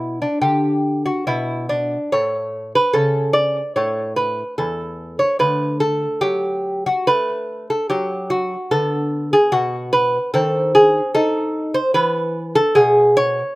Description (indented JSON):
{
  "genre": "classical, baroque-style dance for lute",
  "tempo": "73 BPM",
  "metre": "4/4",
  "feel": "rubato",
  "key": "D major",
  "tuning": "A4 = 440 Hz",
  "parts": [
    { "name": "lute", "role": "solo", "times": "0.0-13.6 s", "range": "E2 to D5", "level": "-16 LUFS", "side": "equal", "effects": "none" }
  ],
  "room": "little or no reverb",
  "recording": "recorded outdoors, with no room sound",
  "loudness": "-16 LUFS",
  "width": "side -19 dB against mid",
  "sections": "0.0-13.6 A section",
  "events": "none",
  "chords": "0.0 G; 2.1 A; 3.8 A5; 5.4 D; 8.7 Bm/D; 10.3 Adim/Eb; 11.9 E5",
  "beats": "0.42 1.26 | 2.12 2.94 3.76 4.58 | 5.39 6.22 7.07 7.90 | 8.71 9.53 10.34 11.15 | 11.95 12.76"
}